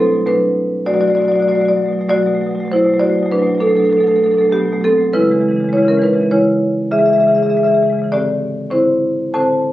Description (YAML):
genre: classical, contemporary piece for solo marimba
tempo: 99 BPM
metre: 5/4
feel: rubato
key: unclear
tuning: A4 = 440 Hz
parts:
  - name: marimba with medium mallets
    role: solo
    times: 0.0-9.7 s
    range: A2 to A5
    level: -12 LUFS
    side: equal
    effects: none
room: light reverb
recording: recorded on a phone in the room, club reverb, compression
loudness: -12 LUFS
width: side -14 dB against mid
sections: 0.0-9.7 A section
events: none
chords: 0.0 Bm7; 5.1 C#m7; 8.1 Am11